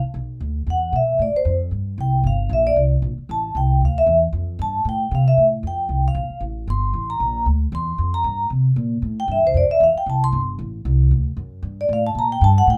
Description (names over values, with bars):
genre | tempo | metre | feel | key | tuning
jazz, small-group swing and bop | 230 BPM | 4/4 | swing 58% on 8ths | F major | A4 = 440 Hz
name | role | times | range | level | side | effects
vibraphone with medium mallets | melody | 0.0-12.8 s | C5 to C6 | -21 LUFS | equal | none
upright bass | bass | 0.0-12.8 s | G1 to C3 | -22 LUFS | equal | none
room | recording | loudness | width
light reverb | none | -20 LUFS | mono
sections
0.0-5.4 A section; 5.4-12.8 A section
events
vibraphone solo 0.0-12.8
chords
0.1 Bm; 0.7 E5; 1.2 Am7; 2.2 Gm7; 2.8 Bbsus2; 3.3 F6; 5.4 Gm11; 6.4 Gsus24; 6.9 N.C.; 7.5 Gm7; 8.5 C7(no3); 9.6 Fsus2; 10.6 Am; 11.1 D; 11.6 Gmadd9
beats
| 0.15 0.41 0.67 0.94 | 1.20 1.46 1.72 1.98 | 2.24 2.51 2.77 3.03 | 3.29 3.55 3.81 4.07 | 4.33 4.60 4.86 5.12 | 5.38 5.64 5.90 6.16 | 6.42 6.68 6.95 7.21 | 7.47 7.73 7.99 8.25 | 8.51 8.77 9.03 9.29 | 9.55 9.81 10.07 10.34 | 10.60 10.86 11.12 11.38 | 11.64 11.90 12.16 12.42 | 12.68